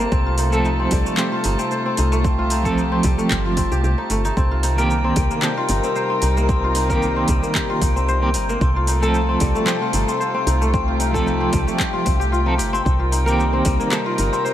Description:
organic downtempo; 113 BPM; 4/4; swing 54% on 16ths; A4 = 441 Hz
dark chamber string section; sustained chords; 0.0-14.5 s; C3 to Bb4; -25 LUFS; left 1 dB; sidechain pumping
kora; arpeggios; 0.0-14.5 s; G3 to C5; -23 LUFS; left 1 dB; ping-pong delay
woody FM bass; bass; 0.0-14.3 s; G1 to C2; -20 LUFS; equal
drifting glass-harmonics texture; texture; 0.0-14.5 s; G5 to A5; -32 LUFS; equal; chorus, built-in reverb
deep house drum kit; drums; 0.1-14.5 s; handclaps, hi-hat, shaker; -27 LUFS; equal; overdrive, small room ambience
electronic kick drum; drums; 0.1-13.8 s; -23 LUFS; equal; overdrive, small room ambience
clean electric guitar; accompaniment; 0.5-14.0 s; Eb3 to C5; -25 LUFS; right 2 dB; tremolo, sidechain pumping, ping-pong delay
light reverb; -17 LUFS; side -12 dB against mid
0.0-14.5 A section
0.1 F

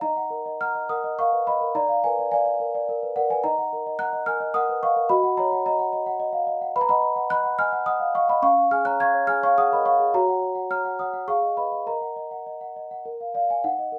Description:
classical, lullaby for celesta; 106 BPM; 3/4; rubato; Eb minor; A4 = 439 Hz
celesta; solo; 0.0-14.0 s; Db4 to Ab6; -23 LUFS; equal
moderate large studio reverb, RT60 0.8 s; band playing live in one room; -23 LUFS; mono
0.0-13.7 A section
0.0 Ebm; 1.7 Bb7/Eb; 3.4 Ebm; 5.1 Ebm/Gb; 6.8 B; 8.4 Db; 10.1 Gb; 11.3 Abm; 11.9 Ebm/Bb; 13.1 Bb

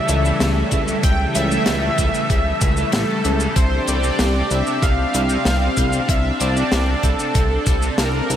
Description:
synthwave; 95 BPM; 4/4; straight; A4 = 440 Hz
soft supersaw; melody; 0.0-8.4 s; A4 to G5; -22 LUFS; right 1 dB; tape echo
warm analog pad; sustained chords; 0.0-8.4 s; C#3 to A5; -23 LUFS; left 1 dB; chorus, sidechain pumping
overdriven electric guitar; riff; 0.1-8.4 s; A2 to G3; -30 LUFS; left 1 dB; analog chorus, tape echo
chorused synth bass; bass; 0.1-8.4 s; A1 to C#2; -21 LUFS; equal; sidechain pumping
deep reggae drum kit; drums; 0.1-8.4 s; cabasa, hi-hat, snare drum; -25 LUFS; left 1 dB
electronic kick drum; drums; 0.7-7.8 s; -20 LUFS; equal
moderate huge ambient reverb, RT60 7.3 s; dreamy mix soaked in reverb; -16 LUFS; side -10 dB against mid
0.0-8.4 A section
0.0 A7/C#; 3.6 Csus2

